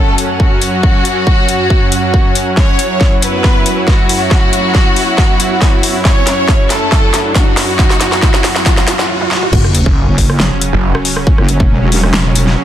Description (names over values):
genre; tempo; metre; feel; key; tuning
heavy wobble dubstep; 138 BPM; 4/4; half-time; F# minor; A4 = 440 Hz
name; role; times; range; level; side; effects
rich chamber violin section; melody; 0.0-9.4 s; A3 to C#5; -16 LUFS; equal; tape echo
supersaw pad; sustained chords; 0.0-12.6 s; F#2 to E4; -18 LUFS; right 2 dB; sidechain pumping
dark chamber string section; texture; 0.0-9.1 s; C#4 to F#5; -22 LUFS; left 1 dB; sidechain pumping
dubstep drum kit; drums; 0.2-12.6 s; crash cymbal, hi-hat, rim click, snare drum, toms; -16 LUFS; left 1 dB; high-pass filter on hats, high-pass filter on snare, high-pass filter on toms, high-pass filter on cymbals
electronic kick drum; drums; 0.4-11.7 s; none; -11 LUFS; equal; none
riser and sub drop; sound effects; 3.8-11.3 s; none; -20 LUFS; equal; none
wobble bass; bass; 9.5-12.6 s; E1 to F#1; -12 LUFS; equal; chorus, overdrive
snarling distorted saw bass; bass; 9.9-10.9 s; F#1; -12 LUFS; equal; distortion, overdrive
room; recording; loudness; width
light reverb; dense, heavily limited modern master; -9 LUFS; side -11 dB against mid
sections
0.0-9.5 A section; 9.5-12.6 B section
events
build-up 0.0-9.5; drum fill 2.6-9.1, 9.2-9.5; riser 3.8-9.5; break 9.1-9.5; drop 9.5-12.6; impact 9.5-11.3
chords
0.0 F#5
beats
0.40 | 0.83 1.27 1.70 2.14 | 2.57 3.01 3.44 3.88 | 4.31 4.75 5.18 5.62 | 6.05 6.49 6.92 7.36 | 7.79 8.22 8.66 9.09 | 9.53 9.96 10.40 10.83 | 11.27 11.70 12.14 12.57